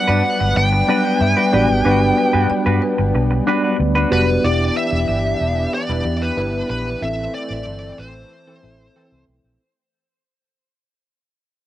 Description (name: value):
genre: pop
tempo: 93 BPM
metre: 4/4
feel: straight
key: G major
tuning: A4 = 440 Hz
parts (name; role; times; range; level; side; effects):
- high-gain lead guitar; melody; 0.0-9.2 s; B4 to G5; -21 LUFS; equal; distortion, cassette tape
- mellow tine electric piano; accompaniment; 0.0-9.6 s; G3 to E5; -21 LUFS; left 1 dB; medium stereo tremolo, cassette tape
- warm analog pad; sustained chords; 0.0-9.6 s; E3 to B4; -28 LUFS; left 1 dB; chorus, tremolo, cassette tape
- funky polysynth comp; stabs; 0.0-9.2 s; E3 to B4; -30 LUFS; left 2 dB; none
- clean electric guitar; riff; 0.1-4.3 s; D4 to B4; -22 LUFS; right 2 dB; lush chorus, cassette tape
- vintage muted fingered electric bass; bass; 0.1-9.6 s; E1 to G2; -20 LUFS; equal; none
- marimba with medium hard mallets; second line; 1.2-4.1 s; B4 to E5; -25 LUFS; left 1 dB; cassette tape
room: moderate booth ambience, RT60 0.2 s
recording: home recording on cassette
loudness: -15 LUFS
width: side -13 dB against mid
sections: 0.0-4.4 A section; 4.4-9.6 B section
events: fade-out 4.4-9.6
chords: 0.0 Gmaj7; 4.4 Em7; 7.0 Am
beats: 0.57 1.21 | 1.86 2.50 3.15 3.79 | 4.44 5.08 5.73 6.37 | 7.02 7.67 8.31 8.96